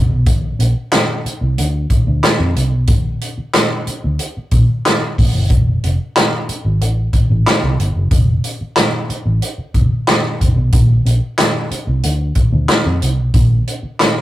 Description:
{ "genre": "funk", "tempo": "92 BPM", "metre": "4/4", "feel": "straight", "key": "unclear", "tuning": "A4 = 440 Hz", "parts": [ { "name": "vintage muted fingered electric bass", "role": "bass", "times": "0.0-13.9 s", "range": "F1 to F2", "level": "-16 LUFS", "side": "equal", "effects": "none" }, { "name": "vintage drum kit", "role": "drums", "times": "0.3-14.2 s", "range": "handclaps, hi-hat, kick drum, snare drum", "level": "-14 LUFS", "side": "equal", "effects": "none" } ], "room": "moderate booth ambience, RT60 0.2 s", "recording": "rough rehearsal-room recording", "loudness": "-13 LUFS", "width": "side -15 dB against mid", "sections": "0.0-14.2 A section", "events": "none", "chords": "none" }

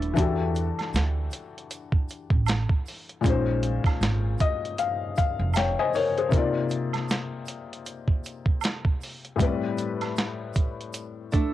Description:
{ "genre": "lo-fi hip hop", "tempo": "78 BPM", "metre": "4/4", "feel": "swing 59% on 16ths", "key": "unclear", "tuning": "A4 = 440 Hz", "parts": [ { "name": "nylon-string guitar", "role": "second line", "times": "0.0-0.1, 11.3-11.5 s", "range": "A3 to D4", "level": "-31 LUFS", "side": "right 4 dB", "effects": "cassette tape, tape echo" }, { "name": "felt-muted upright piano", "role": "accompaniment", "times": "0.0-11.5 s", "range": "A2 to Ab5", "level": "-28 LUFS", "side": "left 5 dB", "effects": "cassette tape" }, { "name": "upright bass", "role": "bass", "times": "0.0-5.7 s", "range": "Eb1 to E2", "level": "-26 LUFS", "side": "right 1 dB", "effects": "tube saturation" }, { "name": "dusty soul sampler-style drum kit", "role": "drums", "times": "0.0-11.5 s", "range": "hi-hat, kick drum, snare drum", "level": "-25 LUFS", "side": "right 1 dB", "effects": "overdrive" }, { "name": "tube shaker and woodblock", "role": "percussion", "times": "0.2-11.5 s", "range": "none", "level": "-37 LUFS", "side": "right 10 dB", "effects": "none" } ], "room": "small room ambience", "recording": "home recording on cassette", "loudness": "-24 LUFS", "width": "side -14 dB against mid", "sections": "0.0-11.5 A section", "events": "felt piano fill 4.0-6.3", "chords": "0.2 Em11; 3.2 Bbm11; 6.3 Cm11; 9.4 Am11" }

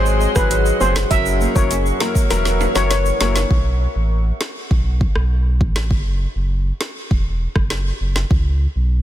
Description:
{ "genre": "dancehall", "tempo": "100 BPM", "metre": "4/4", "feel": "straight", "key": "unclear", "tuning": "A4 = 440 Hz", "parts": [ { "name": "bright concert grand piano", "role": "accompaniment", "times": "0.0-3.4 s", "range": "F#3 to A#4", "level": "-26 LUFS", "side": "left 7 dB", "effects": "none" }, { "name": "deep dark ambient pad", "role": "sustained chords", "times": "0.0-3.5 s", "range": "G#4 to C#6", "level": "-25 LUFS", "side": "left 2 dB", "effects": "chorus, built-in reverb, sidechain pumping" }, { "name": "flamenco guitar", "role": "arpeggios", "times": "0.0-3.6 s", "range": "F#2 to D#4", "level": "-26 LUFS", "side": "right 4 dB", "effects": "none" }, { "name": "sub bass with octave", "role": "bass", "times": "0.0-9.0 s", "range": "E1 to C#2", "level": "-19 LUFS", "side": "equal", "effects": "none" }, { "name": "egg shaker and timbales", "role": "percussion", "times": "0.1-3.5 s", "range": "none", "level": "-30 LUFS", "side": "right 3 dB", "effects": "none" }, { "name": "steel pan", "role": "melody", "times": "0.4-3.3 s", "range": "A#4 to E5", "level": "-22 LUFS", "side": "left 2 dB", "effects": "tape echo" }, { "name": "afro-pop drum kit", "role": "drums", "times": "0.4-8.4 s", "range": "hi-hat, kick drum, rim click, snare drum", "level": "-20 LUFS", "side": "equal", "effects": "overdrive" } ], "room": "small room reverb", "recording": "dense, heavily limited modern master", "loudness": "-16 LUFS", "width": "side -12 dB against mid", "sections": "0.0-3.5 A section; 3.5-9.0 B section", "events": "drum fill 2.3-3.5; break 3.5-9.0", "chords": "0.0 G#7; 1.1 F#7; 3.5 Asus2; 5.9 Esus2; 8.3 Bsus2" }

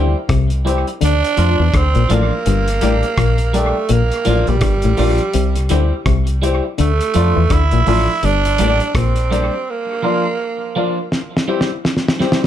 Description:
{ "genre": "roots reggae", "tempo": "83 BPM", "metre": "4/4", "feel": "swing 60% on 16ths", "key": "unclear", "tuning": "A4 = 440 Hz", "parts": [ { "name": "growling tenor saxophone", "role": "melody", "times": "0.0-11.1 s", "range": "G3 to E4", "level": "-20 LUFS", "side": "right 4 dB", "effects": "tape echo" }, { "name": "clean electric guitar", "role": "accompaniment", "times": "0.0-12.5 s", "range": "F3 to G4", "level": "-24 LUFS", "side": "right 3 dB", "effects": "phaser, tape echo" }, { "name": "muted clav", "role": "riff", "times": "0.0-9.2 s", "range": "G2 to F3", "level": "-21 LUFS", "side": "left 7 dB", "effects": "none" }, { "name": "dark upright piano", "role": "stabs", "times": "0.0-12.4 s", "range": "E4 to D5", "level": "-22 LUFS", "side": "left 7 dB", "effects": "none" }, { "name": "deep dub fingered electric bass", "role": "bass", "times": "0.0-9.5 s", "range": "G1 to F2", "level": "-16 LUFS", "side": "equal", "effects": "none" }, { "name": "cloth-damped thuddy drum kit", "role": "drums", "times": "0.3-12.5 s", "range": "hi-hat, kick drum, rim click, snare drum", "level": "-20 LUFS", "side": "equal", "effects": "dub echo" } ], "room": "moderate studio reverb, RT60 0.5 s", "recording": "none", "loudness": "-14 LUFS", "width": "side -11 dB against mid", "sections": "0.0-12.5 A section", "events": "break 9.7-12.5; drum fill 11.1-12.5", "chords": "0.0 C; 1.0 Dm; 2.5 Gm; 3.9 Bb; 5.3 C; 6.8 Dm; 8.2 Gm; 9.7 Bb; 11.1 C" }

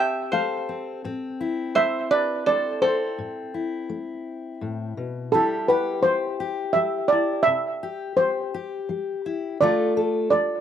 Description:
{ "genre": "acoustic folk duo or small band", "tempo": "84 BPM", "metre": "3/4", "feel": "straight", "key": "C major", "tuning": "A4 = 440 Hz", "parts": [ { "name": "steel pan", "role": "melody", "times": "0.0-10.6 s", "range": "A4 to G5", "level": "-21 LUFS", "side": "right 2 dB", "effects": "slapback echo" }, { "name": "metal-body resonator slide guitar", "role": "second line", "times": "0.0-4.6 s", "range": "A4 to E5", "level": "-29 LUFS", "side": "right 2 dB", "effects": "slapback echo" }, { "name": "fingerpicked steel-string acoustic guitar", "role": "accompaniment", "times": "0.0-10.6 s", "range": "A2 to C5", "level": "-28 LUFS", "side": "left 4 dB", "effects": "slapback echo" } ], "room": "little or no reverb", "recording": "recorded outdoors, with no room sound", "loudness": "-22 LUFS", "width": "side -9 dB against mid", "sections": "0.0-5.3 A section; 5.3-10.6 B section", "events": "none", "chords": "0.0 Fadd9; 1.0 Am; 5.3 C; 9.6 Dm" }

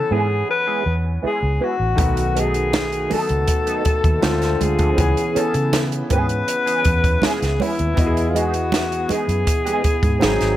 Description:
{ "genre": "lush 1970s-style soul", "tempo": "80 BPM", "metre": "4/4", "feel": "straight", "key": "E major", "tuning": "A4 = 440 Hz", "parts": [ { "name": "warm alto saxophone", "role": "melody", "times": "0.0-10.6 s", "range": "E4 to B4", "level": "-22 LUFS", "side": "left 2 dB", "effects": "slapback echo" }, { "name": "clear concert grand piano", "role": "accompaniment", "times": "0.0-10.6 s", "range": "D3 to G#5", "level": "-26 LUFS", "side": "equal", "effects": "none" }, { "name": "mellow electric guitar", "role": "riff", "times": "0.1-10.4 s", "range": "E3 to B4", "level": "-26 LUFS", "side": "right 5 dB", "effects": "wah, analog chorus" }, { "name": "vintage muted fingered electric bass", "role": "bass", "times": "0.1-10.6 s", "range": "G#1 to C#3", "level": "-22 LUFS", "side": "equal", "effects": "none" }, { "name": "warm French horn section", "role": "sustained chords", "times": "2.0-10.6 s", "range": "C#3 to F#4", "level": "-30 LUFS", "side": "right 1 dB", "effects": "none" }, { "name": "compact cocktail drum kit", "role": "drums", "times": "2.0-10.6 s", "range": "hi-hat, kick drum, snare drum", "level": "-21 LUFS", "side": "equal", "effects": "none" }, { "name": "congas", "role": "percussion", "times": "2.0-10.4 s", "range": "none", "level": "-28 LUFS", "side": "right 6 dB", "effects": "none" } ], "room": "studio reverb", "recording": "none", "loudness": "-17 LUFS", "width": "side -13 dB against mid", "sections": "0.0-10.6 A section", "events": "none", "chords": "0.0 C#m7; 2.0 B7; 4.2 Dm7; 5.0 C#m7; 8.0 Emaj7" }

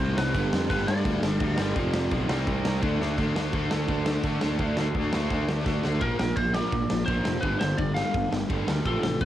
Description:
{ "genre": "punk rock", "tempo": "169 BPM", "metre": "4/4", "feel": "straight", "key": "unclear", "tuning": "A4 = 445 Hz", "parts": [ { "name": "lightly driven lead guitar", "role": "melody", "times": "0.0-2.8, 6.0-9.2 s", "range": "A4 to F5", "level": "-31 LUFS", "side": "left 1 dB", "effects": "cassette tape" }, { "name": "biting overdriven guitar", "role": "riff", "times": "0.0-9.2 s", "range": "F2 to D4", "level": "-32 LUFS", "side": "left 6 dB", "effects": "cassette tape" }, { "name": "overdriven electric guitar", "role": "riff", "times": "0.0-9.2 s", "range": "F2 to D4", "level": "-33 LUFS", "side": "equal", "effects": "cassette tape" }, { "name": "raw garage guitar", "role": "riff", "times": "0.0-9.2 s", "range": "F2 to D4", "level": "-33 LUFS", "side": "right 8 dB", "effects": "overdrive, cassette tape" }, { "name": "fuzz picked electric bass", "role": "bass", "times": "0.0-9.2 s", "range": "F1 to D3", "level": "-28 LUFS", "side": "equal", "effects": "overdrive" }, { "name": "big rock drum kit", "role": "drums", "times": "0.0-9.2 s", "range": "crash cymbal, kick drum, ride cymbal, snare drum", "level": "-30 LUFS", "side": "equal", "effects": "cassette tape" } ], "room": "small room ambience", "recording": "home recording on cassette", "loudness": "-24 LUFS", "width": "side -12 dB against mid", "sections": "0.0-3.2 A section; 3.2-6.0 B section; 6.0-9.2 C section", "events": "drum fill 3.0, 5.7-6.0", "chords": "0.3 G; 1.8 F5; 2.3 C5; 2.8 D5; 6.0 Bb; 7.4 G5" }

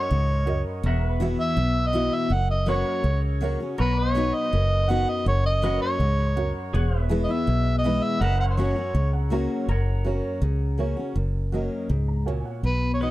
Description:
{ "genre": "honky-tonk and classic country", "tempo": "163 BPM", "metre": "4/4", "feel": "straight", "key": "unclear", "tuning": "A4 = 440 Hz", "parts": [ { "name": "mellow harmonica", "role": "melody", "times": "0.0-9.1, 12.7-13.1 s", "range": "B4 to F#5", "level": "-27 LUFS", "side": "right 1 dB", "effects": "analog delay" }, { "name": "honky-tonk upright piano", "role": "accompaniment", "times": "0.0-12.6 s", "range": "E4 to A#5", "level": "-34 LUFS", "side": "right 7 dB", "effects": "none" }, { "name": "picked steel-string acoustic guitar", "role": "accompaniment", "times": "0.0-13.1 s", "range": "E2 to F#4", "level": "-27 LUFS", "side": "left 2 dB", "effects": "none" }, { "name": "pedal steel guitar", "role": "sustained chords", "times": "0.0-13.1 s", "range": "G#4 to F#5", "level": "-37 LUFS", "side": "right 2 dB", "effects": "none" }, { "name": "fingered electric bass", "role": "bass", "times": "0.1-13.1 s", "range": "E1 to C#2", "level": "-24 LUFS", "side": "equal", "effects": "none" } ], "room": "light reverb", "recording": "dark, warm production", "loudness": "-21 LUFS", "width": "side -16 dB against mid", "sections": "0.0-9.7 A section; 9.7-12.6 B section", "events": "honky-tonk piano fill 8.9-9.7, 11.9-12.6", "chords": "0.0 F#; 0.8 Esus2; 2.3 F#; 3.8 B; 5.3 F#; 6.7 E; 8.2 F#" }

